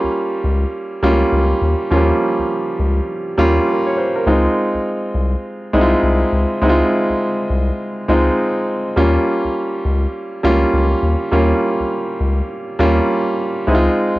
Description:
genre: R&B, new jack swing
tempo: 102 BPM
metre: 4/4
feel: swing 62% on 16ths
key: unclear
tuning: A4 = 437 Hz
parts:
  - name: warm grand piano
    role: accompaniment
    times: 0.0-14.2 s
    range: F3 to Db5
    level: -16 LUFS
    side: right 1 dB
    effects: none
  - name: round analog bass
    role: bass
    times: 0.0-14.2 s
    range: C2 to Eb2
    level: -17 LUFS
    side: left 1 dB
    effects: none
room: light reverb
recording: home recording on cassette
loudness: -15 LUFS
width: side -18 dB against mid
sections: 0.0-14.2 A section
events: none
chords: 0.0 Eb7; 4.3 Dbmaj7; 9.0 Eb7; 13.7 Dbmaj7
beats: 0.14 0.73 1.32 | 1.91 2.49 3.08 3.67 | 4.26 4.85 5.43 6.02 | 6.61 7.20 7.79 8.38 | 8.96 9.55 10.14 10.73 | 11.32 11.91 12.49 13.08 | 13.67

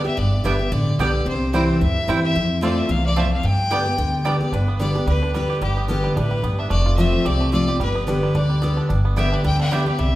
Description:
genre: bluegrass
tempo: 220 BPM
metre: 4/4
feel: swing 56% on 8ths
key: G mixolydian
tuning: A4 = 440 Hz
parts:
  - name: clear fiddle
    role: melody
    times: 0.0-10.2 s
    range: G4 to G5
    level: -26 LUFS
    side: left 1 dB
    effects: none
  - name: picked steel-string acoustic guitar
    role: accompaniment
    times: 0.0-10.2 s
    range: E2 to G4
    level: -21 LUFS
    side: left 1 dB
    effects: none
  - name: upright bass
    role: bass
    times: 0.0-10.2 s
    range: F1 to G2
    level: -22 LUFS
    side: equal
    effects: none
  - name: mandolin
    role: stabs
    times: 0.4-4.4, 9.2-9.8 s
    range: B3 to A5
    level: -28 LUFS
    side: right 3 dB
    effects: none
  - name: bluegrass banjo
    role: melody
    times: 0.5-10.2 s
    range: G3 to G4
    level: -30 LUFS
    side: right 4 dB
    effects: none
room: wet recital hall reverb, RT60 1.4 s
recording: recorded in a church or concert hall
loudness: -18 LUFS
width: side -16 dB against mid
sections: 0.0-4.5 A section; 4.5-10.2 A section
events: none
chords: 0.0 G; 1.3 C; 2.4 F; 3.4 G; 6.7 F; 7.8 G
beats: | 0.18 0.45 0.72 0.99 | 1.27 1.54 1.81 2.08 | 2.35 2.62 2.90 3.17 | 3.44 3.71 3.99 4.26 | 4.53 4.80 5.08 5.35 | 5.62 5.89 6.17 6.44 | 6.71 6.99 7.26 7.53 | 7.80 8.08 8.35 8.62 | 8.90 9.17 9.45 9.72 | 9.99

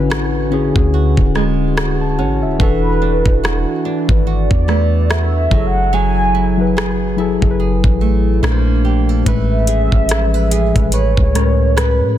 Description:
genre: contemporary R&B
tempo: 72 BPM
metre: 4/4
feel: swing 58% on 16ths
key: unclear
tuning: A4 = 437 Hz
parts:
  - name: muted felt-like synth keys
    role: accompaniment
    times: 0.0-12.2 s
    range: A2 to A5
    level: -19 LUFS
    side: left 5 dB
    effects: chorus
  - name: hollow soft pad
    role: sustained chords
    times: 0.0-12.2 s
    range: A#2 to G#5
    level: -25 LUFS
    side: right 1 dB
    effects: chorus, sidechain pumping
  - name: flamenco guitar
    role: arpeggios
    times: 0.0-12.2 s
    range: D3 to B4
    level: -23 LUFS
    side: right 9 dB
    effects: digital delay
  - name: soft 808-style bass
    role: bass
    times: 0.0-12.2 s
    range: D1 to A2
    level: -17 LUFS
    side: equal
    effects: none
  - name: trap drum kit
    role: drums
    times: 0.1-12.0 s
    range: hi-hat, kick drum, rim click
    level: -18 LUFS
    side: equal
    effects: soft clipping on snare
  - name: warm velvety synth lead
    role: melody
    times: 2.6-12.2 s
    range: B4 to G#5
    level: -20 LUFS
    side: right 1 dB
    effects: chorus, digital delay
room: digital ambience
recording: dense, heavily limited modern master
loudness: -12 LUFS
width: side -12 dB against mid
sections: 0.0-12.2 A section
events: break 0.0-9.3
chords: 0.0 Dmaj9#11; 2.6 E9sus4; 5.5 F#m9; 8.4 A#maj9; 9.3 Amaj9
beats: 0.10 0.93 1.76 | 2.60 3.43 4.26 5.10 | 5.93 6.76 7.60 8.43 | 9.27 10.10 10.93 11.77

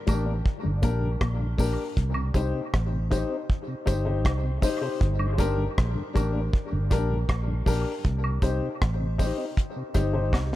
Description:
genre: dub reggae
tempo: 79 BPM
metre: 4/4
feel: straight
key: G minor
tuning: A4 = 440 Hz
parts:
  - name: mellow tonewheel organ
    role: accompaniment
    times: 0.1-10.6 s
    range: G2 to Eb4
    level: -35 LUFS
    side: left 1 dB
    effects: overdrive, chorus vibrato, slow rotary speaker, dub echo
  - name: electric guitar with an envelope filter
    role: riff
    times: 0.1-1.7 s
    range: G2 to Bb2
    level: -36 LUFS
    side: left 4 dB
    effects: none
  - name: warm upright piano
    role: stabs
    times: 0.1-10.4 s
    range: D4 to C5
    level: -31 LUFS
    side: left 5 dB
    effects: dub echo
  - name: vintage muted fingered electric bass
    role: bass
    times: 0.1-10.6 s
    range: G1 to C2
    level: -26 LUFS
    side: right 1 dB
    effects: none
  - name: deep reggae drum kit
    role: drums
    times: 0.1-10.6 s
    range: hi-hat, kick drum, rim click, snare drum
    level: -26 LUFS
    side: equal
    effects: none
  - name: tambourine and woodblock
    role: percussion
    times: 0.1-10.5 s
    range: none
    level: -40 LUFS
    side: right 2 dB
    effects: dub echo
room: studio reverb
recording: echo-heavy mix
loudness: -24 LUFS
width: side -15 dB against mid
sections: 0.0-10.6 A section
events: drum fill 10.3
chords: 0.0 Gm; 2.0 Cm; 5.0 Gm; 8.0 Cm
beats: 0.45 1.21 | 1.97 2.73 3.49 4.25 | 5.01 5.77 6.53 7.29 | 8.05 8.81 9.57 10.33

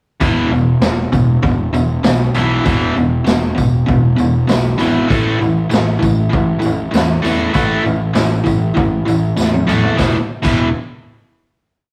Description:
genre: garage rock duo or trio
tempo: 98 BPM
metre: 4/4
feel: straight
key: unclear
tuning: A4 = 439 Hz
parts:
  - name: biting overdriven guitar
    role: riff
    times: 0.2-10.7 s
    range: E2 to A3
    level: -18 LUFS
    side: equal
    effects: none
  - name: fuzz picked electric bass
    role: bass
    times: 0.2-10.7 s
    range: E1 to E2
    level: -23 LUFS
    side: equal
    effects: overdrive
  - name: vintage drum kit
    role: drums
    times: 0.2-10.6 s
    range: crash cymbal, kick drum, snare drum, toms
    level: -20 LUFS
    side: equal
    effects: vintage 12-bit sampler grit
  - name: tambourine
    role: percussion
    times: 0.2-10.7 s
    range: none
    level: -39 LUFS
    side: equal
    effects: none
room: moderate stone room reverb, RT60 1.0 s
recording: rough rehearsal-room recording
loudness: -15 LUFS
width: mono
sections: 0.2-10.0 verse; 10.0-11.9 final chord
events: drum fill 9.4-10.0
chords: 0.2 E5; 5.1 A5; 10.0 E5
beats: | 0.21 0.82 1.43 2.04 | 2.65 3.27 3.88 4.49 | 5.10 5.71 6.32 6.93 | 7.54 8.15 8.76 9.37 | 9.98 10.59

